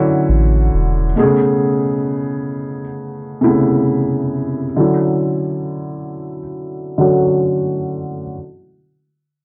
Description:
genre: lo-fi hip hop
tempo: 67 BPM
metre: 4/4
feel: swing 57% on 16ths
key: D lydian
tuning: A4 = 441 Hz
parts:
  - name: felt-muted upright piano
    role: accompaniment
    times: 0.0-8.4 s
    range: B2 to G#4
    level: -18 LUFS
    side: equal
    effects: cassette tape, low-pass filter
  - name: soft dub sub bass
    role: bass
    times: 0.3-1.1 s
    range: E1 to A1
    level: -16 LUFS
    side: equal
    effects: none
room: light reverb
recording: dark, warm production, low-pass filter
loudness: -17 LUFS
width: mono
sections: 0.0-8.3 A section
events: filter sweep 0.0-8.3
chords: 0.0 Dmaj9; 1.2 Amaj9; 4.8 Dmaj9

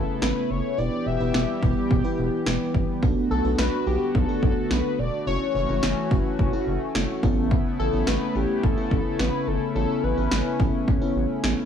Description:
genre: synth-pop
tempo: 107 BPM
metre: 4/4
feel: straight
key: unclear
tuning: A4 = 439 Hz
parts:
  - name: wide unison lead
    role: melody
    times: 0.0-10.6 s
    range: G4 to E5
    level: -28 LUFS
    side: left 4 dB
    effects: tape echo
  - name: FM electric piano with soft pad layer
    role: accompaniment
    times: 0.0-11.7 s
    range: B3 to B4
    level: -29 LUFS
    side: right 2 dB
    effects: chorus, tremolo
  - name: chorused pulse-width pad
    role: sustained chords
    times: 0.0-11.7 s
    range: C#3 to G4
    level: -28 LUFS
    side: left 1 dB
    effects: none
  - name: round analog bass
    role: bass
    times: 0.0-11.5 s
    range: E1 to B1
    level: -26 LUFS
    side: equal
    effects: none
  - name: punchy analog drum machine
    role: drums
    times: 0.2-11.6 s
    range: kick drum, snare drum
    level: -24 LUFS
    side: equal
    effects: none
room: little or no reverb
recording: dry, gritty hardware recording, cassette tape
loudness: -21 LUFS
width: side -8 dB against mid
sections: 0.0-11.7 A section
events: none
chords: 0.0 F#m7; 0.8 Em; 3.0 Bm7; 5.3 F#m7; 7.2 Aadd9

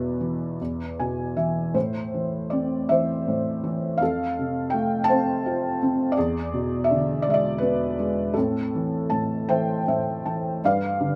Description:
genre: classical, lyrical solo piano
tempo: 54 BPM (dotted quarters)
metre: 6/8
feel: uneven beats, rubato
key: A minor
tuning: A4 = 442 Hz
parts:
  - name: felt-muted upright piano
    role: solo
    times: 0.0-11.2 s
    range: E2 to A5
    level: -25 LUFS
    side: equal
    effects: none
room: moderate studio reverb, RT60 0.6 s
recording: none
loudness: -25 LUFS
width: mono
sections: 0.0-10.6 A section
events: felt piano fill 0.6-1.8, 9.5-10.6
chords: 0.0 E5; 1.8 Am; 4.0 F; 6.2 E7; 8.3 Am; 10.6 G

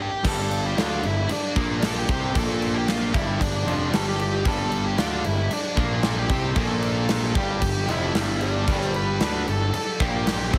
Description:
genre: quiet-loud alternative rock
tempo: 114 BPM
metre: 4/4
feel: straight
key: unclear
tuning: A4 = 440 Hz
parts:
  - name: fuzz lead guitar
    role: melody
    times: 0.0-10.6 s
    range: D4 to B5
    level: -31 LUFS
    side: equal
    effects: distortion, tape echo
  - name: bright tonewheel organ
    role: sustained chords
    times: 0.2-10.6 s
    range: none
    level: barely audible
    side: none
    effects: none
  - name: distorted electric guitar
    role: riff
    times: 0.2-10.6 s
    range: F2 to D4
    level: -34 LUFS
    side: equal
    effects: overdrive
  - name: fuzz guitar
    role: riff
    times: 0.2-10.6 s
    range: F2 to D4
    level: -33 LUFS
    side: equal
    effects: distortion
  - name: fuzz picked electric bass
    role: bass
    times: 0.2-10.6 s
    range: F1 to D2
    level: -30 LUFS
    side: equal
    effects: overdrive
  - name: huge arena drum kit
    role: drums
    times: 0.2-10.6 s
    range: crash cymbal, kick drum, snare drum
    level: -28 LUFS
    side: equal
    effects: none
  - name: distorted electric guitar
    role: riff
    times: 0.3-10.6 s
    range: F2 to D4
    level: -34 LUFS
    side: equal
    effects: none
room: light reverb, small room ambience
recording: heavily compressed radio sound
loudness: -24 LUFS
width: mono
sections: 0.2-10.6 A section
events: stop 0.0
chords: 0.2 G5

